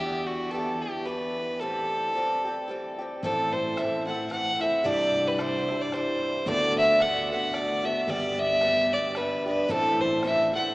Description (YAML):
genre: celtic folk, Celtic waltz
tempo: 111 BPM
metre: 3/4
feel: swing 56% on 8ths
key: A dorian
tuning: A4 = 440 Hz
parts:
  - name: clear fiddle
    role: melody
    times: 0.0-10.7 s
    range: F#4 to F#5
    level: -25 LUFS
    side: equal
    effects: none
  - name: picked old ladder-braced acoustic guitar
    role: accompaniment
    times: 0.0-10.7 s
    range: D2 to G4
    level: -30 LUFS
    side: equal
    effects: none
  - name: fretless electric bass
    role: bass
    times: 0.0-10.6 s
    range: G1 to E2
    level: -39 LUFS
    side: equal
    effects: none
  - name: bodhran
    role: percussion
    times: 3.2-10.5 s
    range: none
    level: -43 LUFS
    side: equal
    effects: none
room: wet cathedral reverb, RT60 6.0 s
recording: recorded in a church or concert hall, small speaker sound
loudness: -24 LUFS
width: side -20 dB against mid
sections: 0.0-3.2 A section; 3.2-10.7 B section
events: none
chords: 0.0 Em; 1.6 Am7; 3.2 Am; 4.8 Cadd9; 6.5 D6; 8.1 G; 9.7 Am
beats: 0.52 1.06 | 1.60 2.15 2.69 | 3.23 3.77 4.31 | 4.85 5.38 5.92 | 6.46 7.00 7.54 | 8.08 8.62 9.16 | 9.70 10.23